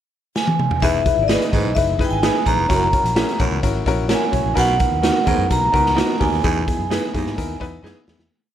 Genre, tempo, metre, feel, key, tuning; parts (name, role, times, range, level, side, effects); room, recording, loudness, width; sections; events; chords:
uptempo 1960s-style soul; 128 BPM; 4/4; straight; A4 = 440 Hz
vibraphone with medium hard mallets; melody; 0.4-7.8 s; D5 to A#5; -21 LUFS; right 2 dB; slapback echo
raw garage drum kit; drums; 0.4-8.3 s; hi-hat, kick drum, snare drum, toms; -21 LUFS; equal
warm baby grand piano; accompaniment; 0.8-8.3 s; B3 to C#5; -24 LUFS; left 6 dB
raspy baritone saxophone; riff; 0.8-7.3 s; D#2 to B2; -27 LUFS; right 6 dB
vintage muted fingered electric bass; bass; 0.8-8.3 s; E1 to G#2; -24 LUFS; equal
electric guitar through a small old amp; stabs; 1.3-8.0 s; C#4 to B4; -26 LUFS; right 5 dB; spring reverb
small room ambience; -16 LUFS; side -10 dB against mid
0.0-0.8 pickup bar; 0.8-8.3 pre-chorus
drum fill 0.4-0.8, 7.8-8.3; fade-out 6.4-8.3
0.0 N.C.; 0.8 Emaj7; 2.7 F#7; 4.6 Bmaj7; 6.4 Emaj7